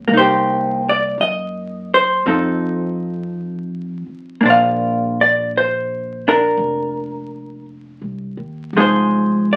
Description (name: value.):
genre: jazz ballad.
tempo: 55 BPM.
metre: 4/4.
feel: swing 67% on 8ths.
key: unclear.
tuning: A4 = 440 Hz.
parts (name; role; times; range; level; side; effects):
vintage hollow-body jazz guitar; accompaniment; 0.0-9.6 s; F3 to F5; -18 LUFS; equal; none.
upright bass; bass; 0.0-9.6 s; F1 to F#2; -30 LUFS; equal; none.
room: wet studio ambience, RT60 0.5 s.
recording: very old 78 rpm record, vinyl crackle.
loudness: -18 LUFS.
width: mono.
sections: 0.0-9.6 A section.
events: none.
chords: 0.1 Cm7; 2.3 F7; 4.4 Bbadd9; 8.7 Fm7.